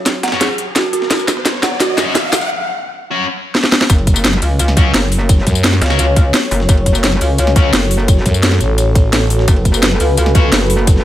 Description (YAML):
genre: dark technical drum and bass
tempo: 172 BPM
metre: 4/4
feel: straight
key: F# minor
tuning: A4 = 440 Hz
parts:
  - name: dark analog pad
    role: sustained chords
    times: 0.0-11.0 s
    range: F#4 to G#5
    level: -21 LUFS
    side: left 1 dB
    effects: chorus, sidechain pumping
  - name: riser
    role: sound effects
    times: 0.0-2.5 s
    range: none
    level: -22 LUFS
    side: equal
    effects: none
  - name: breakbeat sampler-style drum kit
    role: drums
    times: 0.1-11.0 s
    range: hi-hat, ride cymbal, snare drum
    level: -25 LUFS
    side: right 1 dB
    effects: high-pass filter on cymbals, high-pass filter on snare, high-pass filter on hats
  - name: drum and bass drum kit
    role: drums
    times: 0.1-10.9 s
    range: hi-hat, snare drum, tambourine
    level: -15 LUFS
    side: equal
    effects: none
  - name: dark detuned synth bell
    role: arpeggios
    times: 0.2-2.4 s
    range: F#4 to F#5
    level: -20 LUFS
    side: right 2 dB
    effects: chorus, sidechain pumping, low-pass filter, digital delay
  - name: distorted electric guitar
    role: stabs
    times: 0.3-7.7, 10.3-10.5 s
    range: F#3 to F#4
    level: -21 LUFS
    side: left 3 dB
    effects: distortion, low-pass filter, digital delay
  - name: metallic wobble bass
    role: bass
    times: 3.9-11.0 s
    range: F#1 to C#2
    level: -15 LUFS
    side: equal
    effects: chorus
  - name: electronic kick drum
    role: drums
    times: 3.9-10.9 s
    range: none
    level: -11 LUFS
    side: equal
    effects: overdrive
  - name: growling FM bass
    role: bass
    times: 5.5-5.8, 8.3-9.5 s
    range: A1 to F#2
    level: -14 LUFS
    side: equal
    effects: tube saturation
room: light reverb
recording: none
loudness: -11 LUFS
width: side -13 dB against mid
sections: 0.0-3.9 A section; 3.9-11.0 B section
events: build-up 0.0-3.9; drum fill 0.0-2.5, 3.5-3.9; riser 0.0-2.5; filter sweep on synth bell 0.0-3.9; drop 3.9-11.0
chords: 0.0 F#5; 3.9 F#m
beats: 0.06 0.41 0.76 | 1.11 1.46 1.80 2.15 | 2.50 2.85 3.20 3.55 | 3.90 4.25 4.59 4.94 | 5.29 5.64 5.99 6.34 | 6.69 7.04 7.38 7.73 | 8.08 8.43 8.78 9.13 | 9.48 9.83 10.18 10.53 | 10.87